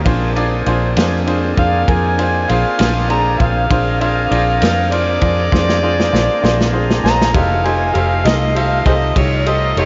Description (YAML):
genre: slow blues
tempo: 66 BPM (dotted quarters)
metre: 12/8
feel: straight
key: Bb mixolydian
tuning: A4 = 442 Hz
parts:
  - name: bright grand piano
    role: accompaniment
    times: 0.0-9.9 s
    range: D4 to Eb5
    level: -23 LUFS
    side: equal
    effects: none
  - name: overdriven tonewheel organ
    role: sustained chords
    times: 0.0-9.9 s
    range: E3 to Bb4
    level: -24 LUFS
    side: equal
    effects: slow rotary speaker
  - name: vintage muted fingered electric bass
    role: bass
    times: 0.0-9.9 s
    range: F1 to F2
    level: -20 LUFS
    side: equal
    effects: none
  - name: crunchy breakbeat drum kit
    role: drums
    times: 0.1-9.9 s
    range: kick drum, ride cymbal, snare drum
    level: -22 LUFS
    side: equal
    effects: none
  - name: overdriven harmonica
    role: second line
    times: 1.6-9.9 s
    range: Ab4 to Bb5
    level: -21 LUFS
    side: equal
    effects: none
room: moderate lush hall reverb, RT60 2.9 s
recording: dreamy mix soaked in reverb, nothing above 7.6 kHz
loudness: -15 LUFS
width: mono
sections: 0.0-9.9 A section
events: harmonica solo 0.0-9.9; drum fill 5.5-7.3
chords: 0.1 Bb9; 7.3 F9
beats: | 0.06 0.97 1.88 2.79 | 3.70 4.61 5.52 6.43 | 7.34 8.25 9.16